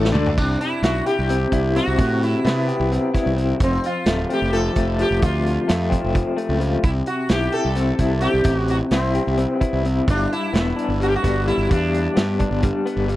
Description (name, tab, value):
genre	psychedelic rock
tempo	259 BPM (eighths)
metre	7/8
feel	straight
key	unclear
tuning	A4 = 441 Hz
part	electric guitar through a small old amp	riff	0.0-13.2 s	F2 to G4	-22 LUFS	left 2 dB	tremolo
part	fuzz fingered electric bass	bass	0.0-13.2 s	D1 to C3	-22 LUFS	right 1 dB	overdrive
part	vintage drum kit	drums	0.0-13.2 s	crash cymbal, hi-hat, kick drum, snare drum, toms	-22 LUFS	right 1 dB	none
part	sitar	melody	0.4-13.1 s	B3 to A4	-25 LUFS	right 1 dB	tape echo
room	little or no reverb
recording	dry, close 1970s-style studio recording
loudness	-18 LUFS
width	side -15 dB against mid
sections	0.4-13.2 A section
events	drum fill 0.0-0.4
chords	0.4 Cmaj7; 3.6 F; 6.8 C; 10.1 G6